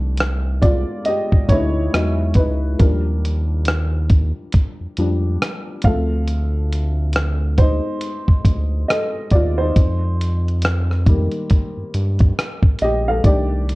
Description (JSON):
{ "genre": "lo-fi hip hop", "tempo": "69 BPM", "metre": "4/4", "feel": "swing 60% on 16ths", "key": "unclear", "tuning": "A4 = 439 Hz", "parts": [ { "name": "dark upright piano", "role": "accompaniment", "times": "0.0-13.8 s", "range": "Eb3 to G5", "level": "-23 LUFS", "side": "equal", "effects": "tape saturation, low-pass filter" }, { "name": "round analog bass", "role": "bass", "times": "0.0-13.8 s", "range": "Bb1 to G2", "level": "-19 LUFS", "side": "equal", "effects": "none" }, { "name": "dusty soul sampler-style drum kit", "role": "drums", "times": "0.2-13.8 s", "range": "hi-hat, kick drum, rim click", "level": "-16 LUFS", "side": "equal", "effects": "none" } ], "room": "little or no reverb", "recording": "cassette tape", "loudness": "-16 LUFS", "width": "side -21 dB against mid", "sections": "0.0-13.2 A section", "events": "upright piano solo 0.0-13.2", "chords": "0.0 Cm69; 1.9 Emaj9; 2.8 Ebmaj9; 5.8 Dm7; 9.8 F9sus4; 13.2 Cm69" }